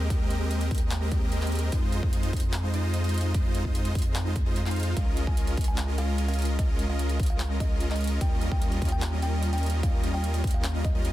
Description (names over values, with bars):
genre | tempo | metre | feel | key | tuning
future bass | 148 BPM | 4/4 | half-time | unclear | A4 = 440 Hz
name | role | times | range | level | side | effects
supersaw chords | riff | 0.0-11.1 s | G3 to F5 | -32 LUFS | equal | sidechain pumping, digital delay
saturated sub bass | bass | 0.0-11.1 s | Db2 to F2 | -28 LUFS | equal | sidechain pumping
big-room dance drum kit | drums | 0.1-11.1 s | handclaps, hi-hat | -38 LUFS | equal | none
electronic kick drum | drums | 0.1-10.9 s | none | -27 LUFS | equal | none
kalimba | melody | 5.0-11.1 s | Eb5 to Ab5 | -39 LUFS | equal | sidechain pumping, digital delay
room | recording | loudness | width
little or no reverb | dense, heavily limited modern master | -24 LUFS | side -15 dB against mid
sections
0.0-11.1 A section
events
none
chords
0.0 Abmaj9/Eb; 1.7 Fm7; 5.0 Db69; 8.2 Eb9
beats
| 0.10 0.51 0.91 1.32 | 1.72 2.13 2.54 2.94 | 3.35 3.75 4.16 4.56 | 4.97 5.37 5.78 6.18 | 6.59 6.99 7.40 7.80 | 8.21 8.62 9.02 9.43 | 9.83 10.24 10.64 11.05